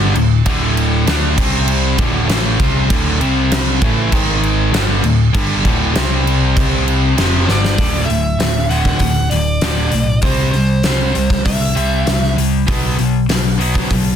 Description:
hard rock; 98 BPM; 4/4; straight; D mixolydian; A4 = 445 Hz
distorted electric guitar; riff; 0.0-14.2 s; D2 to D4; -22 LUFS; right 11 dB; overdrive
distorted electric guitar; riff; 0.0-7.8 s; D2 to D4; -20 LUFS; left 1 dB; overdrive
scooped high-gain guitar; riff; 0.0-14.2 s; D2 to D4; -20 LUFS; left 10 dB; distortion
overdriven picked electric bass; bass; 0.0-14.2 s; D1 to D2; -18 LUFS; equal
gated 80s drum kit; drums; 0.2-14.0 s; crash cymbal, hi-hat, kick drum, snare drum; -18 LUFS; equal
bluesy overdriven lead guitar; melody; 7.5-12.3 s; C5 to F#5; -21 LUFS; right 2 dB; distortion, slapback echo
light reverb; dense, heavily limited modern master; -12 LUFS; side -9 dB against mid
0.0-7.8 A section; 7.8-14.2 B section
drum fill 7.5-7.8
0.0 D5; 1.4 C5; 2.0 D5; 3.2 C5; 3.8 A5; 4.1 G#5; 4.7 D5; 6.0 C5; 7.2 G7sus4/F; 7.8 D5; 10.2 C; 12.7 B5

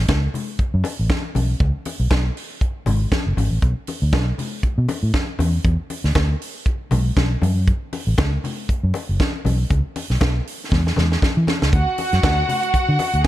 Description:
disco; 118 BPM; 4/4; swing 56% on 16ths; F# minor; A4 = 441 Hz
vintage muted fingered electric bass; bass; 0.0-13.2 s; F#1 to E3; -18 LUFS; equal
tight funk drum kit; drums; 0.1-13.3 s; hi-hat, kick drum, snare drum; -22 LUFS; equal
congas; percussion; 0.1-13.3 s; -28 LUFS; left 5 dB
warm studio violin section; second line; 11.7-13.3 s; F#4 to F#5; -20 LUFS; right 1 dB
small room ambience; dark, warm production; -18 LUFS; side -14 dB against mid
0.0-11.7 A section; 11.7-13.3 B section
drum fill 10.7-11.7
0.0 F#m; 1.6 C#5; 3.6 N.C.; 5.4 E5; 7.4 F#5; 9.7 Bsus2; 10.7 N.C.; 11.7 D

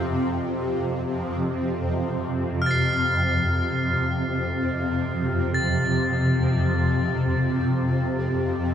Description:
world meditative, free-time meditation music; free time; F major pentatonic; A4 = 440 Hz
shimmering ambient pad; drone; 0.0-8.7 s; F2 to C3; -22 LUFS; equal; chorus, built-in reverb, phaser
crotales; texture; 2.6-8.7 s; F6 to C7; -27 LUFS; right 1 dB
wet huge ambient reverb, RT60 4.2 s; dark, warm production; -21 LUFS; side -9 dB against mid
0.0-8.7 A section

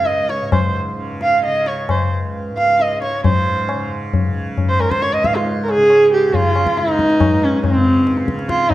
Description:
indian classical, Hindustani; 135 BPM; 5/4; uneven beats; Db raga yaman; A4 = 440 Hz
warm sarangi; melody; 0.0-8.7 s; C4 to F5; -15 LUFS; right 1 dB
tanpura; drone; 0.0-8.7 s; Db2 to Db3; -25 LUFS; right 1 dB
tabla; percussion; 0.1-8.7 s; -20 LUFS; left 3 dB
moderate recital hall reverb, RT60 1.3 s; dark, warm production; -14 LUFS; side -14 dB against mid
0.0-3.2 A section; 3.2-8.7 B section
speeding up 0.0-8.7

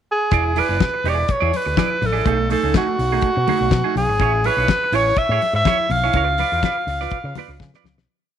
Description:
disco; 124 BPM; 4/4; straight; A4 = 443 Hz
breathy alto saxophone; melody; 0.1-7.6 s; F#4 to E#5; -20 LUFS; right 1 dB
semi-hollow electric guitar; accompaniment; 0.3-8.0 s; A3 to D5; -24 LUFS; right 11 dB; analog chorus
picked electric bass with an envelope filter; bass; 0.3-8.1 s; E1 to C#3; -22 LUFS; left 1 dB
damped 70s drum kit; drums; 0.3-8.1 s; hi-hat, kick drum, snare drum; -22 LUFS; left 3 dB
congas; percussion; 0.6-8.0 s; -30 LUFS; left 12 dB
light reverb, studio reverb; 1960s-style stereo with parts hard left and right; -16 LUFS; side -9 dB against mid
0.0-0.3 pickup bar; 0.3-8.1 pre-chorus
fade-out 6.1-8.1; drum fill 7.6-8.1
0.3 E7; 2.3 B13; 4.2 Amaj7; 6.1 C#7b9

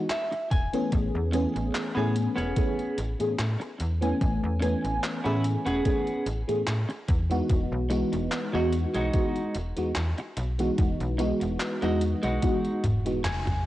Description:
vaporwave; 73 BPM; 4/4; swing 54% on 16ths; E major; A4 = 440 Hz
FM electric piano with soft pad layer; accompaniment; 0.0-13.2 s; E3 to G#5; -28 LUFS; equal; phaser, analog chorus, vintage 12-bit sampler grit, analog delay
clean electric guitar; riff; 0.1-13.6 s; G#3 to G#5; -31 LUFS; equal; lush chorus, analog delay
detuned 8-bit digital drum machine; drums; 0.1-13.6 s; handclaps, hi-hat, toms; -33 LUFS; equal; cassette tape
slap-like FM bass; bass; 0.5-13.6 s; E1 to A2; -29 LUFS; equal; tube saturation
electronic kick drum; drums; 0.5-12.6 s; -26 LUFS; equal; cassette tape
light reverb; home recording on cassette, nothing above 10.9 kHz; -24 LUFS; side -15 dB against mid
0.0-13.7 A section
clean electric guitar fill 0.0-0.9, 12.8-13.7; drum fill 12.8-13.7; band accent 13.3-13.7
0.0 Emaj9

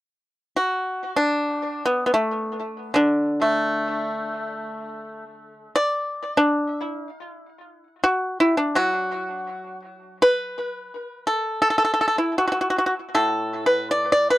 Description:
chinese traditional, Chinese solo plucked strings; free time; D gong mode; A4 = 441 Hz
pipa; solo; 0.6-14.4 s; A2 to D5; -20 LUFS; equal; tape echo
little or no reverb; dry, close 1970s-style studio recording; -20 LUFS; side -16 dB against mid
0.0-7.3 A section; 7.3-14.4 B section

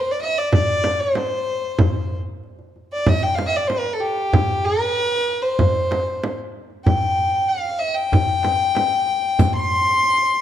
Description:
Arabic maqam ensemble; 95 BPM; 4/4; straight; C maqam rast; A4 = 440 Hz
dark violin; melody; 0.0-10.4 s; G4 to C6; -19 LUFS; left 1 dB
darbuka; percussion; 0.1-10.4 s; -22 LUFS; left 2 dB
frame drum; percussion; 0.5-9.5 s; -23 LUFS; right 3 dB
riq; percussion; 9.4-10.3 s; -34 LUFS; left 4 dB
moderate recital hall reverb, RT60 1.7 s; dark, warm production; -17 LUFS; side -10 dB against mid
0.0-10.4 A section

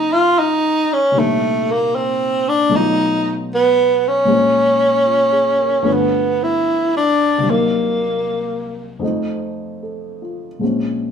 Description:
jazz ballad; 76 BPM; 4/4; swing 67% on 8ths; A4 = 440 Hz
breathy tenor saxophone; melody; 0.0-9.1 s; A3 to F4; -15 LUFS; right 1 dB
dark baby grand piano; accompaniment; 0.0-11.1 s; C2 to C5; -21 LUFS; left 2 dB
wet studio reverb, RT60 0.7 s; band playing live in one room; -14 LUFS; side -7 dB against mid
0.0-10.6 A section
0.0 Ebm9; 1.1 Cm9; 2.7 B7#11; 4.3 Bbm7; 5.9 G7; 7.4 Cm7b5; 9.0 F7

